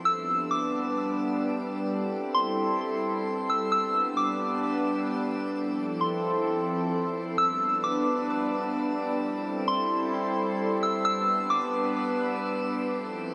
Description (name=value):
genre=hip hop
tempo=131 BPM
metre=4/4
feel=half-time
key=unclear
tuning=A4 = 439 Hz
part: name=warbly tape-like pad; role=sustained chords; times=0.0-13.3 s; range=F3 to B4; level=-30 LUFS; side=equal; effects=chorus, built-in reverb, tremolo
part: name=soft synth bell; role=melody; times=0.1-11.9 s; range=C6 to E6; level=-31 LUFS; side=equal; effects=chorus, phaser, low-pass filter, delay
room=wet shimmer reverb, RT60 8.0 s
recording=none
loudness=-28 LUFS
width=mono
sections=0.0-7.4 A section; 7.4-13.3 B section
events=none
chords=0.1 G; 1.9 Am7; 3.7 G; 5.5 Fmaj7; 7.4 G; 9.2 Am7; 11.0 G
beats=| 0.05 0.51 0.97 1.43 | 1.89 2.34 2.80 3.26 | 3.72 4.18 4.63 5.09 | 5.55 6.01 6.47 6.92 | 7.38 7.84 8.30 8.76 | 9.21 9.67 10.13 10.59 | 11.05 11.51 11.96 12.42 | 12.88 13.34